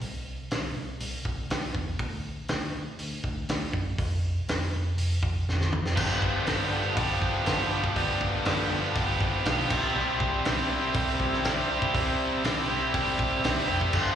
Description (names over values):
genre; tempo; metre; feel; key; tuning
quiet-loud alternative rock; 121 BPM; 4/4; straight; unclear; A4 = 441 Hz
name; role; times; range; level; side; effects
vintage muted picked electric bass; bass; 0.0-14.1 s; F1 to F#2; -32 LUFS; equal; none
loose indie drum kit; drums; 0.0-14.1 s; crash cymbal, hi-hat, kick drum, snare drum, toms; -30 LUFS; equal; none
overdriven electric guitar; riff; 6.0-14.2 s; G2 to G4; -26 LUFS; equal; slapback echo
room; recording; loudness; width
small room ambience; live gig heard through the venue's PA, recital hall reverb; -25 LUFS; side -9 dB against mid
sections
0.0-6.0 A section; 6.0-14.2 B section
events
drum fill 5.5-6.0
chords
0.0 N.C.; 6.0 G7; 9.7 C